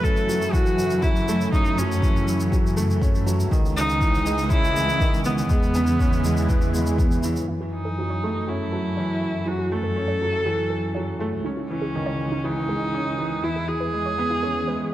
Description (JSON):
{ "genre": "piano and strings electronica", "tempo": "121 BPM", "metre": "4/4", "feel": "straight", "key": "F# dorian", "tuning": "A4 = 440 Hz", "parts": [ { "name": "rich viola", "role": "melody", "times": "0.0-14.9 s", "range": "B3 to A4", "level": "-26 LUFS", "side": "equal", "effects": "none" }, { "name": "lush unison pad", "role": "sustained chords", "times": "0.0-14.9 s", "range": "C#3 to D#5", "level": "-33 LUFS", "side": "equal", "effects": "chorus, phaser, sidechain pumping" }, { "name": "warm upright piano", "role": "riff", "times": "0.0-14.9 s", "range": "D#3 to C#4", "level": "-27 LUFS", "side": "right 1 dB", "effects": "low-pass filter, tape echo" }, { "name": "dark chamber cello section", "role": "bass", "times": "0.0-14.9 s", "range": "C#2 to F#2", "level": "-26 LUFS", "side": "equal", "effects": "sidechain pumping" }, { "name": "electronic kick drum", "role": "drums", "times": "0.0-7.1 s", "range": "none", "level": "-21 LUFS", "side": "equal", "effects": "none" }, { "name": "shaker", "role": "drums", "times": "0.0-7.5 s", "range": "none", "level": "-38 LUFS", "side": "equal", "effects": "low-pass filter on perc, low-pass filter on room" }, { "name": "warbly dusty pluck", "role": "arpeggios", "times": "7.5-14.7 s", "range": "D#4 to C#5", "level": "-35 LUFS", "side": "right 3 dB", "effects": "chorus, sidechain pumping, tape echo" } ], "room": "light reverb, small room reverb", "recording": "none", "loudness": "-20 LUFS", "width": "side -14 dB against mid", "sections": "0.0-7.5 A section; 7.5-14.9 B section", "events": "filter sweep on upright piano 7.5-14.9", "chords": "0.0 F#m7; 3.5 C#madd9; 5.5 E6; 7.5 F#m7; 11.4 C#madd9; 13.4 E6", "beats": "0.04 0.54 1.04 | 1.53 2.03 2.52 3.02 | 3.52 4.01 4.51 5.00 | 5.50 6.00 6.49 6.99 | 7.48 7.98 8.47 8.97 | 9.47 9.96 10.46 10.95 | 11.45 11.95 12.44 12.94 | 13.43 13.93 14.43 14.92" }